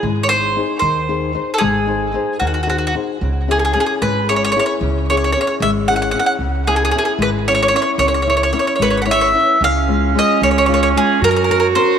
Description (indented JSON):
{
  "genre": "italian folk, Italian serenade",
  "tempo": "75 BPM (dotted quarters)",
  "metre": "6/8",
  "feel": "straight",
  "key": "C# minor",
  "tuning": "A4 = 439 Hz",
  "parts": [
    { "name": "mandolin", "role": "melody", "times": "0.0-12.0 s", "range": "F#4 to F#5", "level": "-16 LUFS", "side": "right 1 dB", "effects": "none" },
    { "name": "nylon-string guitar", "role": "accompaniment", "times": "0.0-12.0 s", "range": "C#3 to B#4", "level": "-21 LUFS", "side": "left 8 dB", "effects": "none" },
    { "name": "upright bass", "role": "bass", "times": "0.0-11.7 s", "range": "G#1 to Gb2", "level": "-21 LUFS", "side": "right 1 dB", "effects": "none" },
    { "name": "clear clarinet", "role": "second line", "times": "9.6-12.0 s", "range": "Db4 to Gb4", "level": "-18 LUFS", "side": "right 11 dB", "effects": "none" }
  ],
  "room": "moderate plate reverb, RT60 2.9 s",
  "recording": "1960s-style stereo with parts hard left and right",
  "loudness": "-14 LUFS",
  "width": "side -8 dB against mid",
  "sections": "0.0-9.6 A section; 9.6-12.0 B section",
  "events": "none",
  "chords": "0.0 G#; 3.2 C#m; 6.4 C#m7; 9.6 Db; 11.2 Gb"
}